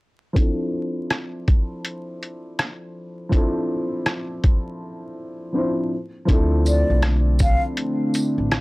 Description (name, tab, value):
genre	lo-fi hip hop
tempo	81 BPM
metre	4/4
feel	swing 64% on 16ths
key	D minor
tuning	A4 = 440 Hz
part	dark upright piano	accompaniment	0.3-8.6 s	F3 to C5	-26 LUFS	equal	low-pass filter
part	lo-fi sampler-style drum kit	drums	0.4-8.6 s	hi-hat, kick drum, rim click, shaker	-19 LUFS	equal	none
part	hollow soft pad	sustained chords	6.7-8.6 s	D3 to D4	-24 LUFS	equal	chorus
part	upright bass	bass	6.3-8.6 s	A1 to D2	-19 LUFS	equal	transformer saturation
part	breathy hollow jazz flute	melody	6.7-7.6 s	D5 to F5	-25 LUFS	equal	tape echo
part	tambourine	percussion	6.7-8.4 s	none	-34 LUFS	right 1 dB	none
room	little or no reverb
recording	dry, gritty hardware recording, vinyl crackle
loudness	-19 LUFS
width	side -22 dB against mid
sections	0.4-6.3 A section; 6.3-8.6 B section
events	filter sweep on upright piano 0.4-6.3; break 4.8-6.3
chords	0.4 Dm9; 5.9 N.C.; 6.3 Dm9